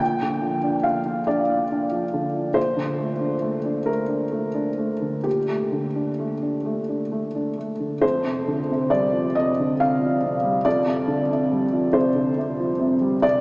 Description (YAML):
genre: neoclassical minimalist piano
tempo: 43-47 BPM (dotted quarters)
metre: 6/8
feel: rubato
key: unclear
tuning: A4 = 439 Hz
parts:
  - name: felt-muted upright piano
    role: solo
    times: 0.0-13.4 s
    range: F2 to G5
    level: -20 LUFS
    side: equal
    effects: none
room: wet cathedral reverb, RT60 6.7 s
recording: recorded in a church or concert hall, small speaker sound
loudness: -20 LUFS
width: side -27 dB against mid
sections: 0.0-8.0 A section; 8.0-13.4 B section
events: none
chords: 0.0 Bb; 2.6 Gmadd9/Bb; 8.0 Fsus2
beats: | 0.00 1.28 | 2.56 3.88 | 5.25 6.65 | 8.02 9.35 | 10.65 11.95 | 13.23